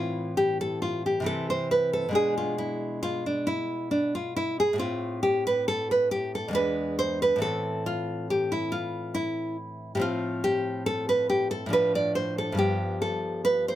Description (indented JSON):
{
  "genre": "classical, baroque-style dance for nylon-string guitar",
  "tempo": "69 BPM",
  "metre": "3/4",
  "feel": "rubato",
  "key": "A minor",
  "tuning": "A4 = 440 Hz",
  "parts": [
    { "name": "nylon-string guitar", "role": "solo", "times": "0.0-13.8 s", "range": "E2 to D5", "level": "-25 LUFS", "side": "equal", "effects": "none" }
  ],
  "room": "light reverb",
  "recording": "close, detailed microphones",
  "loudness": "-25 LUFS",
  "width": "side -12 dB against mid",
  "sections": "0.0-13.8 A section",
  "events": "none",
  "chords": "0.0 Am; 1.2 C6; 2.1 Bdim7; 4.8 Am; 6.5 E7; 7.4 Am; 10.0 F/A; 11.7 Dm/A; 12.6 G7"
}